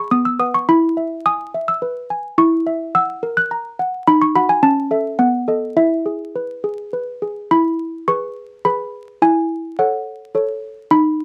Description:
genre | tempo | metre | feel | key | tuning
classical, lullaby for handbells | 106 BPM | 3/4 | straight | E major | A4 = 440 Hz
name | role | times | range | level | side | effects
malleted handbells | solo | 0.0-11.2 s | B3 to F#6 | -18 LUFS | equal | none
room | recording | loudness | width
light reverb | dry, close 1970s-style studio recording, vinyl crackle | -18 LUFS | mono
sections
0.0-7.5 A section; 7.5-11.2 B section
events
none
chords
0.1 B5; 0.7 E; 2.4 F#7/E; 4.1 B69/D#; 4.6 A/C#; 5.2 B7; 5.8 E; 9.2 F#m7/E

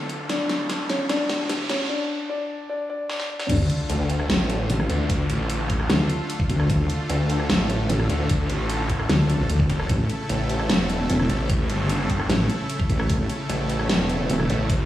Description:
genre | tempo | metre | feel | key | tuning
heavy wobble dubstep | 150 BPM | 4/4 | half-time | D harmonic minor | A4 = 440 Hz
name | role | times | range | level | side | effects
dark concert grand piano | melody | 0.0-3.5 s | A3 to D5 | -27 LUFS | left 2 dB | tape echo
supersaw chords | sustained chords | 0.0-14.9 s | C#3 to A4 | -29 LUFS | equal | sidechain pumping
riser and sub drop | sound effects | 0.0-5.1 s | none | -32 LUFS | right 1 dB | none
dubstep drum kit | drums | 0.1-14.8 s | crash cymbal, hi-hat, rim click, snare drum | -27 LUFS | equal | high-pass filter on hats, studio reverb, high-pass filter on snare, high-pass filter on cymbals
wobble bass | bass | 3.5-14.5 s | E1 to D2 | -21 LUFS | equal | chorus, overdrive
electronic kick drum | drums | 3.5-14.8 s | none | -24 LUFS | equal | studio reverb
snarling distorted saw bass | bass | 3.9-14.9 s | E1 to D2 | -24 LUFS | equal | distortion, overdrive
room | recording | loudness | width
light reverb | played on a big sound system in a bare room, stone room reverb, high-pass filter, small room ambience | -21 LUFS | side -13 dB against mid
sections
0.0-3.5 A section; 3.5-14.9 B section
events
build-up 0.0-3.5; drum fill 0.0-1.9, 3.1-3.5; riser 0.0-1.9; break 1.9-3.5; drop 3.5-14.9; impact 3.5-5.1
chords
0.0 Dm; 9.9 A

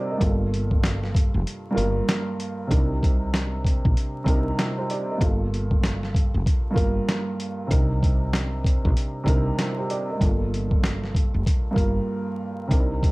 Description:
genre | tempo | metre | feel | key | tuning
hip hop, boom-bap hip-hop | 96 BPM | 4/4 | swing 63% on 16ths | C minor | A4 = 440 Hz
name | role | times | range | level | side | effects
dark upright piano | accompaniment | 0.0-13.1 s | G2 to Eb5 | -27 LUFS | right 1 dB | cassette tape, high-pass filter, low-pass filter
woody fretless electric bass | bass | 0.2-13.1 s | F1 to C2 | -26 LUFS | equal | none
boom bap sampler-style drum kit | drums | 0.2-13.1 s | hi-hat, kick drum, snare drum | -22 LUFS | equal | none
room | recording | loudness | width
light reverb | dark, warm production, vinyl crackle | -21 LUFS | side -22 dB against mid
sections
0.0-2.7 A section; 2.7-13.1 B section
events
break 1.5-2.7, 12.1-12.7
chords
0.2 Gm9; 2.7 Cm9; 5.2 Gm9; 7.7 Cm9; 10.2 Gm9

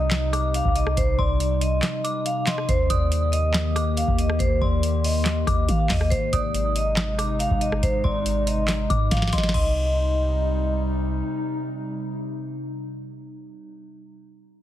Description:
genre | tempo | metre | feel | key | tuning
hip hop, trap | 140 BPM | 4/4 | half-time | C minor | A4 = 440 Hz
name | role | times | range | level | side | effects
vibraphone with medium hard mallets | melody | 0.0-10.8 s | C5 to F5 | -27 LUFS | equal | none
dark detuned synth bell | second line | 0.0-10.8 s | C6 to Eb6 | -32 LUFS | left 2 dB | chorus, phaser, tape echo
warbly tape-like pad | sustained chords | 0.0-13.7 s | C3 to G4 | -29 LUFS | left 2 dB | chorus, built-in reverb
clean 808-style bass | bass | 0.0-11.2 s | Ab1 to Eb3 | -24 LUFS | equal | none
booming analog drum machine | drums | 0.1-9.7 s | crash cymbal, handclaps, hi-hat, kick drum, rim click, snare drum | -25 LUFS | equal | none
room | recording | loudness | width
digital ambience | heavily compressed radio sound | -20 LUFS | side -12 dB against mid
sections
0.0-9.5 A section; 9.5-13.0 B section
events
break 1.8-2.7; drum fill 9.1-9.5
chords
0.0 Cm; 2.7 Eb; 6.1 Ab; 9.5 Cm

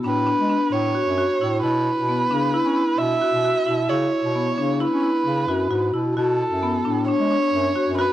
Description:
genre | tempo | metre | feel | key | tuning
contemporary instrumental, chamber music in an uneven meter | 132 BPM | 5/4 | straight | unclear | A4 = 440 Hz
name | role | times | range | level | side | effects
marimba with medium hard mallets | arpeggios | 0.0-8.1 s | B3 to F#4 | -22 LUFS | left 2 dB | none
warm bass clarinet | bass | 0.0-8.0 s | F#2 to C#4 | -26 LUFS | equal | transformer saturation
dark erhu | second line | 0.1-8.1 s | A4 to E5 | -23 LUFS | right 3 dB | tape echo, plate reverb
room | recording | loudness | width
moderate studio reverb, RT60 0.6 s | dry, gritty hardware recording | -19 LUFS | side -13 dB against mid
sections
0.0-8.1 A section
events
none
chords
0.0 Bm9; 1.6 E5/B; 6.2 Bm9

